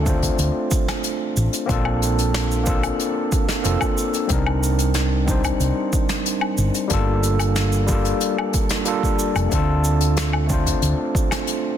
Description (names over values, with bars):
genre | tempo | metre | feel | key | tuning
sunset chillout | 92 BPM | 4/4 | straight | C dorian | A4 = 440 Hz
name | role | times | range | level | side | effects
overdriven tine electric piano | accompaniment | 0.0-11.8 s | G3 to C5 | -22 LUFS | moving between left 4 dB and right 5 dB | auto-pan, ping-pong delay, shimmer reverb
hollow-body short-scale fingered electric bass | bass | 0.0-10.9 s | F1 to D2 | -21 LUFS | equal | tube saturation
electronic kick drum | drums | 0.1-11.3 s | none | -23 LUFS | equal | none
soft brush drum kit | drums | 0.1-11.6 s | hi-hat, shaker, snare drum, woodblock | -26 LUFS | left 2 dB | soft clipping on snare
room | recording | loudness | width
light reverb, studio reverb | dense, heavily limited modern master | -18 LUFS | side -10 dB against mid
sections
0.0-11.8 A section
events
none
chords
0.0 Dm7; 1.7 Bbmaj7; 4.3 Cm7; 6.9 Gm7; 9.5 Dm7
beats
0.39 1.04 | 1.69 2.34 3.00 3.65 | 4.30 4.95 5.61 6.26 | 6.91 7.56 8.21 8.87 | 9.52 10.17 10.82 11.47